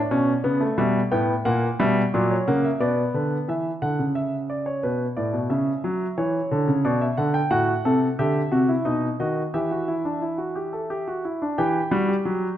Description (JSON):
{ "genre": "classical, baroque-style 3-part fugue for grand piano", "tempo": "89 BPM", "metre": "3/4", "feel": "straight", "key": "E minor", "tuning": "A4 = 439 Hz", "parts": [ { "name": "warm concert grand piano", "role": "solo", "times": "0.0-12.6 s", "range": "A2 to G5", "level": "-21 LUFS", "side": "equal", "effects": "none" } ], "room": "moderate recital hall reverb, RT60 1.4 s", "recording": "none", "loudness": "-21 LUFS", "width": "side -11 dB against mid", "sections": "0.0-3.5 A section; 3.5-11.6 B section", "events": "none", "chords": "0.0 Bm; 0.8 Em/B; 1.5 F#7/A#; 2.8 Bm; 3.5 C#madd11; 4.8 Bm; 5.5 F#5/C#; 6.8 Bm; 7.5 F#dim/A; 8.9 B; 9.5 Em", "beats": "0.12 0.79 | 1.46 2.14 2.82 | 3.49 4.17 4.85 | 5.51 6.18 6.85 | 7.52 8.19 8.86 | 9.54 10.22 10.90 | 11.59 12.26" }